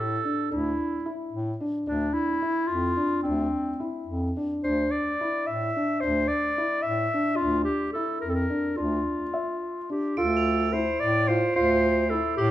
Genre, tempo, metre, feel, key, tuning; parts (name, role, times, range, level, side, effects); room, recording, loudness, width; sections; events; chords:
contemporary instrumental, chamber music in an uneven meter; 218 BPM (eighths); 5/8; straight; D minor; A4 = 440 Hz
clear clarinet; melody; 0.0-12.5 s; C4 to E5; -26 LUFS; equal
felt-muted upright piano; arpeggios; 0.0-12.5 s; D4 to E5; -28 LUFS; equal
warm bass clarinet; bass; 0.0-12.5 s; D2 to A2; -30 LUFS; equal
crotales; texture; 10.2-12.5 s; E6 to F7; -34 LUFS; right 5 dB
moderate recital hall reverb, RT60 1.9 s; minimal, uncompressed stereo recording; -24 LUFS; side -13 dB against mid
0.0-10.2 A section; 10.2-12.5 B section
break 9.5-10.2
0.0 Dsus2; 1.9 Dm9; 4.6 Dsus2; 7.4 Gm13/D (rootless); 8.8 Dmadd9; 10.2 Dm7